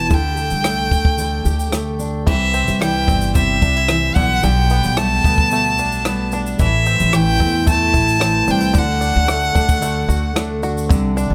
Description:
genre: acoustic pop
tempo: 111 BPM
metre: 4/4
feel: straight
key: unclear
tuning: A4 = 440 Hz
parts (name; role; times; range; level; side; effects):
- bright violin; melody; 0.0-10.4 s; E5 to A5; -21 LUFS; equal; delay
- fingerpicked steel-string acoustic guitar; accompaniment; 0.0-11.3 s; E2 to G4; -24 LUFS; equal; none
- upright bass; bass; 0.0-11.3 s; G1 to E2; -22 LUFS; equal; none
- compact cocktail drum kit; drums; 0.1-11.3 s; crash cymbal, kick drum, rim click, shaker; -22 LUFS; equal; none
- bluegrass banjo; arpeggios; 2.3-11.3 s; D3 to F#4; -31 LUFS; equal; none
room: light reverb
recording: none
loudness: -17 LUFS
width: mono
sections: 0.0-2.3 A section; 2.3-10.9 B section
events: none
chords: 0.1 Dsus4; 2.3 C; 4.2 Gadd9/B; 6.6 Am; 8.8 D

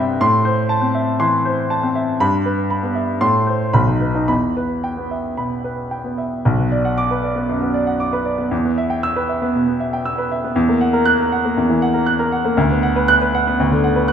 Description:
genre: classical, virtuoso piano study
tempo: 108-123 BPM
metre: 4/4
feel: rubato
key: E minor, B minor from 6.5 s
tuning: A4 = 440 Hz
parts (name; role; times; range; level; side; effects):
- clear grand piano; solo; 0.0-14.1 s; B1 to F#6; -16 LUFS; equal; none
room: moderate recital hall reverb, RT60 1.4 s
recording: minimal, uncompressed stereo recording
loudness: -16 LUFS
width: side -8 dB against mid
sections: 0.0-6.5 A section; 6.5-14.1 B section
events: none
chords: 0.2 Am; 2.2 Em/G; 3.2 Am; 3.7 B; 4.3 Em; 6.5 Bm; 8.5 Em; 10.6 F#7/E; 12.6 Bm/D

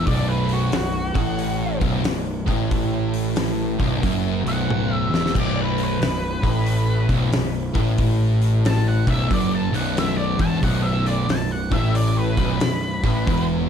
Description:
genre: stoner and doom metal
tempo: 91 BPM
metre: 4/4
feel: swing 64% on 8ths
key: B minor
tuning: A4 = 441 Hz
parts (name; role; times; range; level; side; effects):
- octave-fuzz lead guitar; melody; 0.0-13.5 s; F#4 to A5; -28 LUFS; equal; wah, distortion, ping-pong delay
- sludgy distorted guitar; riff; 0.0-13.7 s; B1 to A2; -27 LUFS; equal; overdrive
- thick fuzz guitar; riff; 0.0-13.7 s; B1 to A2; -26 LUFS; left 8 dB; distortion
- thick fuzz guitar; riff; 0.0-13.7 s; B1 to A2; -25 LUFS; right 6 dB; distortion
- fuzz picked electric bass; bass; 0.0-13.7 s; B0 to A1; -27 LUFS; equal; overdrive
- oversized low-tuned drum kit; drums; 0.1-13.5 s; crash cymbal, hi-hat, kick drum, snare drum, toms; -25 LUFS; equal; none
room: small room ambience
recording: dark, warm production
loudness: -18 LUFS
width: side -8 dB against mid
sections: 0.0-13.7 A section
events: lead electric guitar solo 0.0-13.7; drum fill 4.7-5.3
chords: 0.0 B5

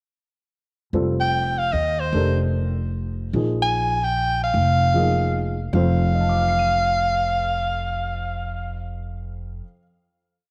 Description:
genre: modal jazz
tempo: 150 BPM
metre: 3/4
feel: swing 65% on 8ths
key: F mixolydian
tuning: A4 = 440 Hz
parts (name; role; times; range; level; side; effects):
- dark baby grand piano; accompaniment; 0.9-9.8 s; F2 to Eb7; -29 LUFS; equal; none
- upright bass; bass; 0.9-9.6 s; F1 to Eb2; -26 LUFS; equal; none
- breathy soprano saxophone; melody; 1.2-8.9 s; C5 to Ab5; -24 LUFS; equal; none
room: moderate echo chamber reverb, RT60 2.4 s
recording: none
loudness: -22 LUFS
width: mono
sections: 0.9-5.7 A section; 5.7-8.1 final chord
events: none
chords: 0.9 F13sus4; 3.3 Bb7sus4; 5.7 F

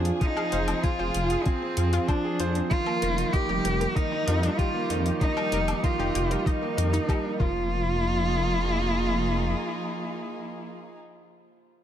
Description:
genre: piano and strings electronica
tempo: 96 BPM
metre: 4/4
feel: straight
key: F minor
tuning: A4 = 440 Hz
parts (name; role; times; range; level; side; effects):
- dark cello; melody; 0.0-10.7 s; C4 to G4; -29 LUFS; equal; none
- warm chamber string section; sustained chords; 0.0-11.0 s; F3 to Ab4; -33 LUFS; right 2 dB; sidechain pumping
- analog pluck; arpeggios; 0.0-8.0 s; Eb4 to F6; -37 LUFS; left 5 dB; chorus, sidechain pumping, ping-pong delay
- warm concert grand piano; riff; 0.0-11.8 s; Eb3 to C5; -31 LUFS; right 2 dB; ping-pong delay
- dark detuned saw bass; bass; 0.0-9.5 s; F1 to F2; -27 LUFS; equal; sidechain pumping
- electronic hi-hat and woodblock; drums; 0.1-7.2 s; none; -37 LUFS; left 2 dB; none
- electronic kick drum; drums; 0.2-7.5 s; none; -26 LUFS; equal; none
room: light reverb, studio reverb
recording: none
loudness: -23 LUFS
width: side -10 dB against mid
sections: 0.0-7.7 A section; 7.7-10.2 B section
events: drop 0.0-7.7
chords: 0.0 Fm; 2.7 Ebadd9/F; 7.4 Fsus4; 7.7 Fm

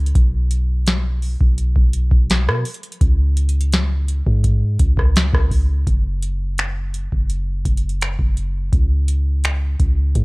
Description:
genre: contemporary R&B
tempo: 84 BPM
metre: 4/4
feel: straight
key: unclear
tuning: A4 = 440 Hz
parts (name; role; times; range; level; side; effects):
- soft 808-style bass; bass; 0.0-10.2 s; F#1 to B2; -18 LUFS; equal; none
- booming analog drum machine; drums; 0.1-10.2 s; finger snaps, hi-hat, kick drum, rim click, snare drum; -18 LUFS; equal; none
room: little or no reverb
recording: dry, gritty hardware recording, cassette tape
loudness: -16 LUFS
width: side -26 dB against mid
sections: 0.0-5.9 A section; 5.9-10.2 B section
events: none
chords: none

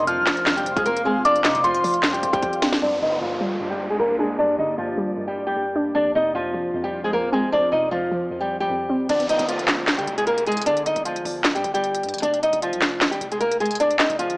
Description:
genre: hip hop, trap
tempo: 153 BPM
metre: 4/4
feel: half-time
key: unclear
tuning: A4 = 442 Hz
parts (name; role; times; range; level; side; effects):
- flamenco guitar; melody; 0.0-14.4 s; F3 to Eb5; -21 LUFS; equal; low-pass filter
- soft synth bell; second line; 0.0-2.4 s; C6 to F6; -22 LUFS; equal; chorus, tape echo
- warbly dusty pluck; accompaniment; 0.0-9.1 s; F2 to D4; -29 LUFS; equal; chorus, low-pass filter
- ethereal airy pad; sustained chords; 0.0-9.1 s; F3 to C6; -32 LUFS; equal; ensemble chorus, built-in reverb, low-pass filter
- distorted 808-style bass; bass; 0.0-2.8, 9.1-14.4 s; F1 to D3; -38 LUFS; equal; distortion
- trap drum kit; drums; 0.1-2.8, 9.1-14.4 s; handclaps, hi-hat, kick drum, snare drum; -22 LUFS; equal; none
- downlifter; sound effects; 2.8-6.0, 9.1-12.2 s; none; -32 LUFS; equal; none
room: moderate concert hall reverb, RT60 2.2 s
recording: small speaker sound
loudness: -19 LUFS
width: side -25 dB against mid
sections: 0.0-2.8 A section; 2.8-9.1 B section; 9.1-14.4 C section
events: drum fill 2.4-2.8; filter sweep 2.8-9.1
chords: 0.0 F5; 2.8 Gm; 6.0 F5; 9.1 N.C.; 12.2 Fm

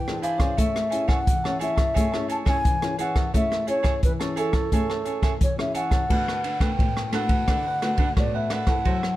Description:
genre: samba and choro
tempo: 87 BPM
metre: 4/4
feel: straight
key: A major, D major from 6.1 s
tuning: A4 = 440 Hz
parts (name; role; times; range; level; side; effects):
- baroque flute; melody; 0.0-9.2 s; A4 to A5; -27 LUFS; equal; none
- nylon-string guitar; accompaniment; 0.0-9.2 s; A2 to A4; -28 LUFS; left 2 dB; none
- open jazz drum kit; drums; 0.1-9.2 s; crash cymbal, hi-hat, kick drum, ride cymbal, rim click; -24 LUFS; equal; none
- cavaquinho; accompaniment; 0.2-9.2 s; D4 to A5; -33 LUFS; right 6 dB; none
room: light reverb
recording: dark, warm production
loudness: -21 LUFS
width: side -15 dB against mid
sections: 0.0-6.1 A section; 6.1-9.2 B section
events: none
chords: 0.0 Eaug7; 0.6 Amaj7; 6.1 D6

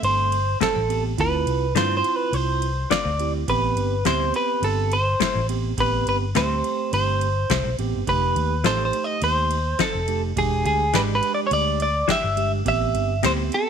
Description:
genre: straight-eighth soul blues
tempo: 104 BPM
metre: 4/4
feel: swing 54% on 16ths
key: A minor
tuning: A4 = 440 Hz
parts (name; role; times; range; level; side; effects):
- direct-recorded clean electric guitar; melody; 0.0-13.7 s; G#4 to E5; -23 LUFS; right 1 dB; lush chorus, slapback echo
- tine electric piano; accompaniment; 0.0-13.7 s; G#3 to A4; -29 LUFS; right 15 dB; medium stereo tremolo
- vintage muted fingered electric bass; bass; 0.0-13.5 s; E1 to G2; -25 LUFS; left 1 dB; none
- booming analog drum machine; drums; 0.0-13.7 s; kick drum, ride cymbal, snare drum; -31 LUFS; right 4 dB; none
- direct-recorded clean electric guitar; stabs; 0.6-13.4 s; A2 to A4; -25 LUFS; left 14 dB; tremolo, slapback echo
room: little or no reverb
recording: 1960s-style stereo with parts hard left and right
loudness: -20 LUFS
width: side -7 dB against mid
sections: 0.0-13.7 A section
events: none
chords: 0.0 Am7; 1.2 Dm7; 3.5 Am7; 8.1 F7; 10.4 E7#9; 12.7 Am7

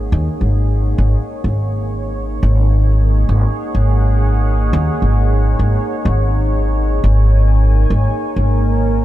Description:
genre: ambient dub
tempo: 104 BPM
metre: 4/4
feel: swing 59% on 16ths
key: unclear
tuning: A4 = 436 Hz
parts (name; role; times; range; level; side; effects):
- deep dark ambient pad; sustained chords; 0.0-9.0 s; A#3 to G#5; -21 LUFS; equal; chorus, built-in reverb
- upright bass; bass; 0.0-9.0 s; G#1 to D#2; -13 LUFS; equal; tube saturation
room: small room ambience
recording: none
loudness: -13 LUFS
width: side -14 dB against mid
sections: 0.0-9.0 A section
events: none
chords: 0.0 D#m/G#

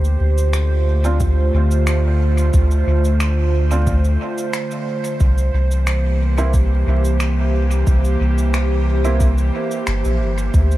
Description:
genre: ambient dub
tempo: 90 BPM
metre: 4/4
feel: swing 53% on 16ths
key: unclear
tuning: A4 = 440 Hz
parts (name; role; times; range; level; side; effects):
- airy breathy pad; sustained chords; 0.0-10.8 s; D3 to C5; -22 LUFS; right 2 dB; chorus, vintage 12-bit sampler grit
- soft dub sub bass; bass; 0.0-10.8 s; G1 to D2; -16 LUFS; equal; none
- electronic cabasa and finger snaps; drums; 0.0-10.8 s; none; -30 LUFS; equal; overdrive, small room ambience, dub echo
- clear upright piano; stabs; 1.0-9.3 s; Bb3 to F4; -30 LUFS; right 2 dB; dub echo
- electronic kick drum; drums; 1.2-10.7 s; none; -18 LUFS; equal; overdrive, small room ambience
room: digital ambience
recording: vinyl crackle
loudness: -15 LUFS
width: side -16 dB against mid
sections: 0.0-10.8 A section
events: none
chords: 0.0 Dm7; 5.2 C7

